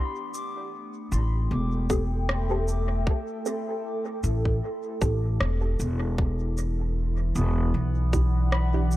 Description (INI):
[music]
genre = ambient dub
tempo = 77 BPM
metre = 4/4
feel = swing 56% on 16ths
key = unclear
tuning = A4 = 440 Hz
[part]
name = warbly tape-like pad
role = sustained chords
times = 0.0-9.0 s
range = E3 to G5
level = -33 LUFS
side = right 1 dB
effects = chorus, built-in reverb, phaser, vintage 12-bit sampler grit
[part]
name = pedal steel guitar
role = arpeggios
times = 0.0-9.0 s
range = B3 to D6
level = -39 LUFS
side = left 3 dB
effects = dub echo
[part]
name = electronic cabasa and rim click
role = drums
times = 0.3-9.0 s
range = none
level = -34 LUFS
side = equal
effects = overdrive, dub echo
[part]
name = upright bass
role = bass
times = 1.1-9.0 s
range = E1 to B1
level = -24 LUFS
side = equal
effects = none
[part]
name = filtered dub chord stab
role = stabs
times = 1.9-8.9 s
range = C4 to A4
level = -35 LUFS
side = right 2 dB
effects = phaser, dub echo
[part]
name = electronic kick drum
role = drums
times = 1.9-8.3 s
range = none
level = -26 LUFS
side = equal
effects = overdrive
[sound]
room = little or no reverb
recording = none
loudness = -24 LUFS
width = side -16 dB against mid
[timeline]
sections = 0.0-9.0 A section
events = none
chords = 0.0 Am7; 6.2 Em7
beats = 0.73 1.51 2.29 | 3.07 3.85 4.63 5.41 | 6.18 6.96 7.74 8.52